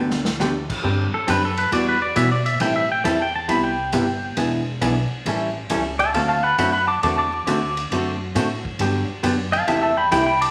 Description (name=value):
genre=country, western swing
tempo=136 BPM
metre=4/4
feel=swing 67% on 8ths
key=unclear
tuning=A4 = 441 Hz
part: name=archtop guitar, miked and amplified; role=accompaniment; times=0.0-10.2 s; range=C3 to A4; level=-25 LUFS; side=equal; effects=none
part: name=upright bass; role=bass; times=0.0-10.5 s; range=E1 to B2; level=-29 LUFS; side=equal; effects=none
part: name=swinging big-band drum kit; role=drums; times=0.1-10.5 s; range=crash cymbal, hi-hat, kick drum, ride cymbal, snare drum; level=-32 LUFS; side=equal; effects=none
part: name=pedal steel guitar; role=second line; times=1.1-10.5 s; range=A4 to D6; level=-23 LUFS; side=equal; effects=none
room=wet large studio reverb, RT60 0.8 s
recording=vinyl crackle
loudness=-21 LUFS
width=mono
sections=0.8-10.5 A section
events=drum fill 0.0-0.4; pedal steel guitar solo 0.8-10.5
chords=0.0 Gmaj7; 0.8 D7sus4; 1.7 Emadd9; 2.6 Am7; 3.5 Cmaj7; 4.4 E7; 5.3 A7; 6.1 D7; 8.8 Gmaj7; 9.7 C6